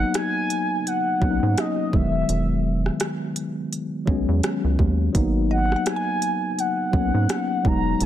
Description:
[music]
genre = contemporary R&B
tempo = 84 BPM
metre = 4/4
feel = swing 58% on 16ths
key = G# minor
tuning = A4 = 440 Hz
[part]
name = mellow horn-like synth lead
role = melody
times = 0.0-8.1 s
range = D#5 to A#5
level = -26 LUFS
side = right 1 dB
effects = chorus, phaser, digital delay
[part]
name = mellow tine electric piano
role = accompaniment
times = 0.0-8.1 s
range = D#3 to D#4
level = -24 LUFS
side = left 2 dB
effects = slow stereo tremolo
[part]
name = rubbery square bass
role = bass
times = 0.0-8.1 s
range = E1 to G#2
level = -23 LUFS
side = right 1 dB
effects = none
[part]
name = smooth R&B drum kit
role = drums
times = 0.1-8.1 s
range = hi-hat, kick drum, rim click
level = -25 LUFS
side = right 1 dB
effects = none
[part]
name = mallet-like synth pluck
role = texture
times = 5.5-7.0 s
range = D#5 to G#5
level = -36 LUFS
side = right 2 dB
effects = chorus, phaser, digital delay
[part]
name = swell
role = sound effects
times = 8.0-8.1 s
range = none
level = barely audible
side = none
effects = none
[sound]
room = little or no reverb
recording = none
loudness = -20 LUFS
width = side -11 dB against mid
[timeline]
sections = 0.0-8.1 A section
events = none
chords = 0.0 G#m9; 1.9 Emaj9; 5.1 G#m9

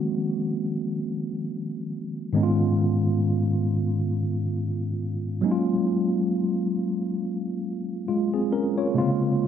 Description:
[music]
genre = R&B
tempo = 68 BPM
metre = 4/4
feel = swing 58% on 16ths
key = unclear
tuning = A4 = 440 Hz
[part]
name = mellow tine electric piano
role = solo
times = 0.0-9.5 s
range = Ab2 to Db5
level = -23 LUFS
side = equal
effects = medium stereo tremolo, tape echo
[sound]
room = moderate lush hall reverb, RT60 2.8 s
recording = dark, warm production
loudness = -23 LUFS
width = side -9 dB against mid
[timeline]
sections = 0.0-9.5 A section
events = none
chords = 0.0 Ab7; 2.3 Db7/Ab; 5.4 Gbmaj7; 9.0 Bbm7

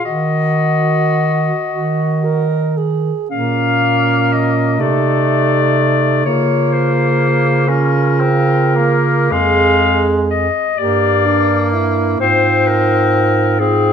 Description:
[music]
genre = classical, lyrical piece for single-reed quartet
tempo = 35-44 BPM (dotted quarters)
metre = 6/8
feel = rubato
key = Eb minor, Bb minor from 3.3 s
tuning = A4 = 440 Hz
[part]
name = clear clarinet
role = melody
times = 0.0-13.9 s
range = Ab4 to F5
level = -17 LUFS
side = left 5 dB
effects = none
[part]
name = clear alto saxophone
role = second line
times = 0.0-13.9 s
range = Db4 to Bb4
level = -20 LUFS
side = right 10 dB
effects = none
[part]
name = clear tenor saxophone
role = accompaniment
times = 0.0-13.9 s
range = Ab3 to Gb4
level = -19 LUFS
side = left 2 dB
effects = none
[part]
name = warm bass clarinet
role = bass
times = 0.1-13.9 s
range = F2 to Eb3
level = -17 LUFS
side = right 2 dB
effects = none
[sound]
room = moderate recital hall reverb, RT60 1.4 s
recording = none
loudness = -12 LUFS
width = side -7 dB against mid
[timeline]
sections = 0.0-3.3 A section; 3.3-13.9 B section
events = none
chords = 0.1 Ebm; 3.3 Bbm; 4.8 Adim/C; 6.3 Bbm/Db; 9.3 Fm; 10.8 Edim/G; 12.2 Fm/Ab

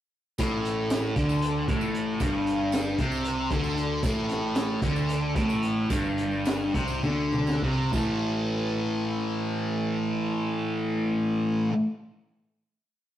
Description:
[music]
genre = psychedelic rock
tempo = 195-232 BPM (eighths)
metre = 7/8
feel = straight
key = unclear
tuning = A4 = 440 Hz
[part]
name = thick fuzz guitar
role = riff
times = 0.4-11.7 s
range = G2 to A3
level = -26 LUFS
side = equal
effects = distortion, phaser
[part]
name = fuzz picked electric bass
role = bass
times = 0.4-11.7 s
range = G1 to D2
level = -35 LUFS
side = equal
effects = overdrive
[part]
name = crunchy breakbeat drum kit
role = drums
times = 0.4-8.1 s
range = hi-hat, kick drum, snare drum, toms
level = -30 LUFS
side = equal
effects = none
[part]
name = tambourine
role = percussion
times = 0.4-8.2 s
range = none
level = -48 LUFS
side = right 5 dB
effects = none
[sound]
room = wet stone room reverb, RT60 1.0 s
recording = rough rehearsal-room recording, warm saturation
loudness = -24 LUFS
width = side -12 dB against mid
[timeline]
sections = 0.4-7.9 riff; 7.9-12.2 final chord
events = slowing down 4.0-7.9; drum fill 7.0-7.9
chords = 0.4 Gsus24; 7.9 A5

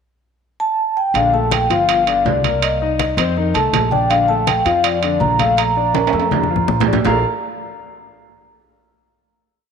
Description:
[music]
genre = Afro-Cuban jazz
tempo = 162 BPM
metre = 4/4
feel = straight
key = Bb major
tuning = A4 = 438 Hz
[part]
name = vibraphone with soft mallets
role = melody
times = 0.6-7.2 s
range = D5 to Bb5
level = -17 LUFS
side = equal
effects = none
[part]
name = clear concert grand piano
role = accompaniment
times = 1.1-7.2 s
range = D3 to F5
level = -23 LUFS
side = left 9 dB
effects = none
[part]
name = upright bass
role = bass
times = 1.1-7.2 s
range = G1 to F2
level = -22 LUFS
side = right 1 dB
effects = none
[part]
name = congas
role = percussion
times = 1.1-7.1 s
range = none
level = -24 LUFS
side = left 7 dB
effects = none
[part]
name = timbales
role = percussion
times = 1.1-7.1 s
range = none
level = -22 LUFS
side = right 13 dB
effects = none
[sound]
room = moderate echo chamber reverb, RT60 2.4 s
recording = 1960s-style stereo with parts hard left and right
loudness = -14 LUFS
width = side -6 dB against mid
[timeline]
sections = 0.0-1.1 pickup bar; 1.1-7.1 A section; 7.1-8.5 final chord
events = drum fill 5.9-7.1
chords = 0.0 N.C.; 1.1 Bbmaj7; 1.9 Gm7; 2.6 Cm7; 3.4 F7; 4.1 Bbmaj7

